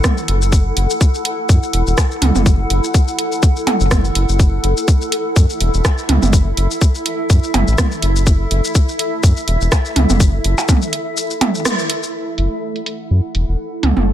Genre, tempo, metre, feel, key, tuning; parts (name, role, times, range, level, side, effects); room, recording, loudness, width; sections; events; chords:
minimal techno; 124 BPM; 4/4; swing 56% on 16ths; F# minor; A4 = 441 Hz
electronic kick drum; drums; 0.0-10.8 s; -12 LUFS; equal; overdrive
garage drum kit; drums; 0.0-13.9 s; hi-hat, rim click, shaker; -22 LUFS; left 1 dB; overdrive, low-pass filter on perc, low-pass filter on snare, low-pass filter on hats
electronic toms and percussion blips; percussion; 0.0-14.1 s; -18 LUFS; right 3 dB; ping-pong delay
granular cloud pad; texture; 0.0-14.1 s; E4 to F#5; -22 LUFS; equal; built-in reverb, sidechain pumping
round analog bass; bass; 0.3-14.1 s; E1 to F#2; -15 LUFS; equal; sidechain pumping
bubbling stepped-filter texture; texture; 12.4-14.1 s; A3 to A4; -28 LUFS; right 2 dB; chorus, built-in reverb, sidechain pumping
digital ambience; -13 LUFS; side -11 dB against mid
0.0-12.1 A section; 12.1-14.1 B section
drop 0.0-12.1; break 11.2-12.1; band accent 11.7
0.0 F#m7